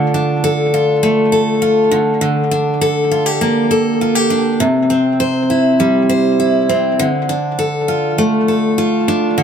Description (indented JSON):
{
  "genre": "pop",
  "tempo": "101 BPM",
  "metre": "4/4",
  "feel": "straight",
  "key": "D minor",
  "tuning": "A4 = 439 Hz",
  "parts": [
    { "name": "picked steel-string acoustic guitar", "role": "solo", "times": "0.0-9.4 s", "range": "C3 to C5", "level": "-12 LUFS", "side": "equal", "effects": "analog delay" }
  ],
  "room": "moderate spring reverb, RT60 2.0 s",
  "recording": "echo-heavy mix",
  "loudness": "-12 LUFS",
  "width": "side -7 dB against mid",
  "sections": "0.0-9.4 A section",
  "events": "none",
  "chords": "0.0 Dm; 1.9 Gmadd9/D; 4.6 C; 7.0 Dm",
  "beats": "0.44 1.04 1.63 | 2.23 2.83 3.42 4.02 | 4.61 5.21 5.80 6.40 | 7.00 7.59 8.19 8.78 | 9.38"
}